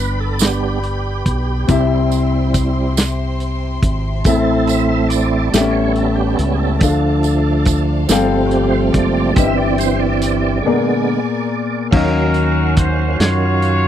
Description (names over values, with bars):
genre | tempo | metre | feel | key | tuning
slow gospel | 47 BPM (dotted quarters) | 6/8 | straight | C major | A4 = 440 Hz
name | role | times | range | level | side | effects
warm baby grand piano | accompaniment | 0.0-13.9 s | G2 to F5 | -19 LUFS | left 5 dB | none
tonewheel organ | sustained chords | 0.0-13.9 s | D3 to F5 | -20 LUFS | right 7 dB | slow rotary speaker, chorus vibrato
warm studio string section | sustained chords | 0.0-11.9 s | Cb4 to C6 | -30 LUFS | equal | none
fingered electric bass | bass | 0.0-13.9 s | F#1 to Gb2 | -19 LUFS | equal | none
warm soul drum kit | drums | 0.4-13.8 s | crash cymbal, hi-hat, kick drum, snare drum | -16 LUFS | equal | none
tambourine | percussion | 0.4-10.6 s | none | -26 LUFS | right 22 dB | none
warm horn section | melody | 11.9-13.9 s | Db4 to Db5 | -19 LUFS | equal | none
room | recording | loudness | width
light reverb | dry, close 1970s-style studio recording | -14 LUFS | side -10 dB against mid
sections
0.0-11.9 A section; 11.9-13.9 B section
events
tonewheel organ solo 0.0-11.9; break 10.6-11.9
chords
0.0 G; 1.7 C; 4.2 Am; 5.5 A7; 6.8 Dm; 8.1 G9sus4; 9.4 C/G; 10.6 Bb7b9; 11.9 Ebm9